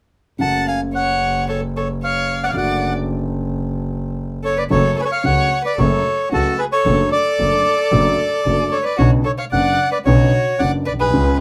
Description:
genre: tango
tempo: 112 BPM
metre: 4/4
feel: rubato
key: F# harmonic minor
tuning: A4 = 440 Hz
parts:
  - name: bandoneon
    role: melody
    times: 0.4-11.4 s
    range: A4 to A5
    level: -21 LUFS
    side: equal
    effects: none
  - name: warm violin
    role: second line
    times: 0.4-11.4 s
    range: F#4 to F#5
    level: -26 LUFS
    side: equal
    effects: none
  - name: warm concert grand piano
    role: accompaniment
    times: 0.4-11.4 s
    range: F#1 to F#4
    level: -24 LUFS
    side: equal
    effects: none
  - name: clear double bass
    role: bass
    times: 0.4-11.4 s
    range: F#1 to C#2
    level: -23 LUFS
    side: equal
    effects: none
room: moderate small room reverb, RT60 0.5 s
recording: band playing live in one room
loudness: -18 LUFS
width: mono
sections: 0.4-4.7 A section; 4.7-11.4 B section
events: none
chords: 0.4 F#m; 2.6 D/F#; 4.7 F#m; 6.9 D/F#; 9.0 Bmadd9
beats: | 0.41 0.95 1.49 2.02 | 2.55 3.09 3.62 4.16 | 4.70 5.24 5.79 6.32 | 6.86 7.39 7.92 8.46 | 8.99 9.53 10.06 10.60 | 11.13

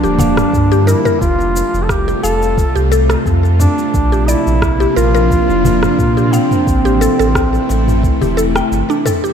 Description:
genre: organic downtempo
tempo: 88 BPM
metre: 4/4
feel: swing 54% on 16ths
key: unclear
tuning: A4 = 440 Hz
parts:
  - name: mellow duduk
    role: melody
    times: 0.0-8.7 s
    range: C4 to A4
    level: -18 LUFS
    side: equal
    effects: vintage 12-bit sampler grit, tape echo, shimmer reverb
  - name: bowed-like drone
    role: sustained chords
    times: 0.0-9.3 s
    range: C3 to F4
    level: -18 LUFS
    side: right 1 dB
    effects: built-in reverb, sidechain pumping, shimmer reverb
  - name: mallet-like synth pluck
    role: arpeggios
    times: 0.0-9.3 s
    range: D4 to G5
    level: -19 LUFS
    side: left 2 dB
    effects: chorus, ping-pong delay, shimmer reverb
  - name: warm sub bass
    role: bass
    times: 0.0-8.8 s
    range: D1 to Bb2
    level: -15 LUFS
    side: equal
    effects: tube saturation
  - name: deep house drum kit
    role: drums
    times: 0.0-9.3 s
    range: cabasa, rim click, toms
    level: -22 LUFS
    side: right 1 dB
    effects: small room ambience
  - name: cajon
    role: percussion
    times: 0.2-9.3 s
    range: none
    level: -21 LUFS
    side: left 1 dB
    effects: none
  - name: electronic kick drum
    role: drums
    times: 0.5-8.2 s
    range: none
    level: -18 LUFS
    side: equal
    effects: small room ambience
room: moderate plate reverb, RT60 2.1 s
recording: dreamy mix soaked in reverb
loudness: -11 LUFS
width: side -8 dB against mid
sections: 0.0-9.3 A section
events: kick drops out 8.7-9.3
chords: 0.0 Gm7; 1.2 Fadd9; 3.9 Bbadd9; 6.7 Am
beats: 0.53 | 1.22 1.90 2.58 3.26 | 3.94 4.62 5.31 5.99 | 6.67 7.35 8.03 8.71

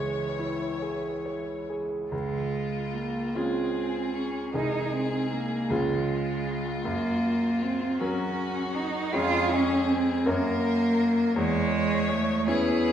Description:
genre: classical, slow romantic movement for piano trio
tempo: 45-55 BPM (dotted quarters)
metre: 6/8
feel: rubato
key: Db major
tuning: A4 = 440 Hz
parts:
  - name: rich violin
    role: melody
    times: 0.0-12.9 s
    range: F4 to C#5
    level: -34 LUFS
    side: left 4 dB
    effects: none
  - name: rich cello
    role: second line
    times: 0.0-12.9 s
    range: E3 to F4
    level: -28 LUFS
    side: right 2 dB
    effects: none
  - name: bright grand piano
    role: accompaniment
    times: 0.0-12.9 s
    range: C2 to C#5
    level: -29 LUFS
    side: equal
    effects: none
room: wet recital hall reverb, RT60 1.5 s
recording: heard from further back in the room, nothing above 10.3 kHz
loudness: -25 LUFS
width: side -9 dB against mid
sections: 0.0-2.1 A section; 2.1-12.9 B section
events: none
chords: 0.0 C#m; 2.1 Db; 4.5 Ab/C; 5.7 Db; 6.8 Gb; 9.1 Db/F; 10.3 Gb; 11.4 C#m/E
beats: 0.82 | 2.12 3.35 | 4.54 5.70 | 6.85 8.00 | 9.13 10.26 | 11.37 12.48

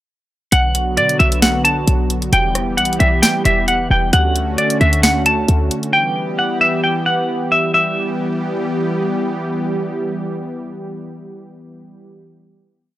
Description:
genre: hip hop, trap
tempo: 133 BPM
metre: 4/4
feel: half-time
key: E dorian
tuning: A4 = 440 Hz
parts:
  - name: semi-hollow electric guitar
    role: melody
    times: 0.5-9.1 s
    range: D5 to A5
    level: -16 LUFS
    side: equal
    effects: low-pass filter, analog delay
  - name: warm analog pad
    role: sustained chords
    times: 0.5-12.1 s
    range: D3 to G4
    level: -21 LUFS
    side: equal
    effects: chorus
  - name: short 808-style bass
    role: bass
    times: 0.5-5.7 s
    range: E1 to B2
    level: -17 LUFS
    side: equal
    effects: none
  - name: trap drum kit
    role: drums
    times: 0.5-5.9 s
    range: hi-hat, rim click, snare drum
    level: -18 LUFS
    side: equal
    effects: none
room: little or no reverb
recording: dry, gritty hardware recording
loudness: -14 LUFS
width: side -14 dB against mid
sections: 0.5-7.7 hook; 7.7-11.3 final chord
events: none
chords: 0.5 Bm; 2.3 Em; 4.1 Dmaj7; 5.9 Em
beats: | 0.52 0.97 1.42 1.88 | 2.33 2.78 3.23 3.68 | 4.13 4.58 5.03 5.48 | 5.93 6.39 6.84 7.29 | 7.74 8.19 8.64 9.09 | 9.54 9.99 10.45 10.90

